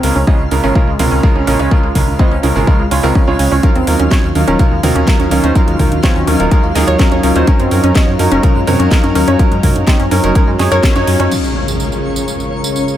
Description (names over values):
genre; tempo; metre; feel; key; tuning
progressive house; 125 BPM; 4/4; straight; Db major; A4 = 436 Hz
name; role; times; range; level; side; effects
bright baby grand piano; stabs; 0.0-11.3 s; Db3 to Eb5; -17 LUFS; right 3 dB; sidechain pumping, dub echo
round analog bass; bass; 0.0-11.3 s; Eb1 to Gb2; -16 LUFS; equal; sidechain pumping
house drum kit; drums; 0.0-13.0 s; crash cymbal, hi-hat, snare drum, tambourine; -23 LUFS; equal; sidechain pumping on hats, sidechain pumping on cymbals, sidechain pumping on perc
twinkling granular texture; texture; 0.0-13.0 s; Db4 to F5; -26 LUFS; right 1 dB; built-in reverb, sidechain pumping
glassy wavetable pluck; arpeggios; 0.2-11.3 s; Ab3 to Db5; -18 LUFS; left 1 dB; chorus, sidechain pumping, dub echo
electronic congas and toms; percussion; 0.2-11.1 s; none; -22 LUFS; right 4 dB; overdrive, sidechain pumping on perc, sidechain pumping on toms
electronic kick drum; drums; 0.3-10.9 s; none; -12 LUFS; equal; none
lush unison pad; sustained chords; 3.6-13.0 s; Db3 to Bb4; -20 LUFS; left 1 dB; chorus, sidechain pumping
impact; sound effects; 11.3-13.0 s; none; -22 LUFS; left 1 dB; none
room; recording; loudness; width
little or no reverb; none; -10 LUFS; side -12 dB against mid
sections
0.0-11.3 A section; 11.3-13.0 B section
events
band accent 10.8; impact 11.3-13.0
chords
0.0 Db6; 3.6 Ebmadd9; 7.5 Gb6; 11.3 Db6